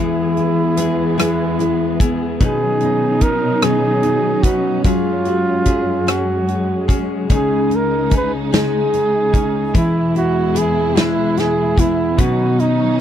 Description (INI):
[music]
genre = six-eight pop ballad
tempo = 49 BPM (dotted quarters)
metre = 6/8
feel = straight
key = unclear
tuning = A4 = 444 Hz
[part]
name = mellow flugelhorn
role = melody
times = 0.0-13.0 s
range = Eb4 to Cb5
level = -19 LUFS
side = right 3 dB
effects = none
[part]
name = nylon-string guitar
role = accompaniment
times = 0.0-13.0 s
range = Cb3 to Ab4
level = -20 LUFS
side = left 1 dB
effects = double-tracked left and right
[part]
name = warm studio string section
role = sustained chords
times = 0.0-13.0 s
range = Db2 to Ab4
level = -22 LUFS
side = equal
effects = none
[part]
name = direct-recorded clean electric guitar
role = arpeggios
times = 0.0-13.0 s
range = Cb3 to Cb5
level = -25 LUFS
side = left 10 dB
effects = none
[part]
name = natural country drum kit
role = drums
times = 0.4-12.8 s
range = hi-hat, kick drum, rim click, snare drum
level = -16 LUFS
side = equal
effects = none
[sound]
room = little or no reverb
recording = dry, close 1970s-style studio recording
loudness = -14 LUFS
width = side -10 dB against mid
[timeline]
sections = 0.0-13.0 A section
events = none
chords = 0.0 E; 2.4 Cbadd9; 4.8 Gbsus2; 7.3 Dbsus2; 9.8 E; 12.2 Cbadd9